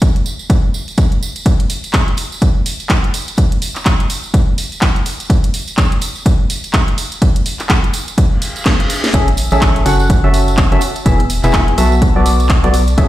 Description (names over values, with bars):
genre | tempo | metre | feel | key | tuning
piano house | 125 BPM | 4/4 | swing 59% on 16ths | unclear | A4 = 440 Hz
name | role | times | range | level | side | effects
electronic kick drum | drums | 0.0-13.1 s | none | -13 LUFS | equal | none
garage drum kit | drums | 0.0-13.1 s | handclaps, hi-hat, snare drum | -20 LUFS | equal | none
tambourine | percussion | 0.0-13.1 s | none | -27 LUFS | right 4 dB | none
reverse cymbal | sound effects | 8.3-9.1 s | none | -22 LUFS | left 1 dB | none
percussive organ stab | riff | 9.1-13.1 s | B3 to F#5 | -16 LUFS | equal | lush chorus, sidechain pumping, tape echo
organ-like FM bass | bass | 9.1-13.1 s | E1 to B1 | -14 LUFS | equal | sidechain pumping
room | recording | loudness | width
light reverb, digital ambience | played on a big sound system in a bare room, stone room reverb | -12 LUFS | side -15 dB against mid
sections
0.0-13.1 A section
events
reverse cymbal 8.3-9.1; drum fill 8.7-9.1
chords
0.0 N.C.; 9.1 Amaj7; 10.1 F#m7; 10.8 E; 12.0 Bm7